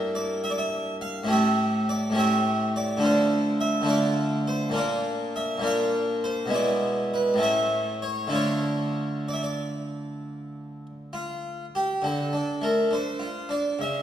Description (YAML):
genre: classical, baroque-style suite movement for harpsichord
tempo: 64-70 BPM (dotted quarters)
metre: 12/8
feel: rubato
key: D minor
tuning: A4 = 436 Hz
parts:
  - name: harpsichord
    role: solo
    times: 0.0-14.0 s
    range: G2 to F5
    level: -23 LUFS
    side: equal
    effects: none
room: wet recital hall reverb, RT60 1.7 s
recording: recorded in a church or concert hall, faint mains hum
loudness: -23 LUFS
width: side -10 dB against mid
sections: 0.0-12.0 A section; 12.0-14.0 B section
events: none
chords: 0.0 Em7b5/G; 1.3 A7; 3.0 Dm; 4.8 Bb; 6.5 E7/B; 7.4 A; 8.3 Dm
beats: 0.42 | 1.29 2.16 3.02 3.87 | 4.75 5.62 6.51 7.40 | 8.32 9.26 10.17 11.10 | 12.03 12.91 13.79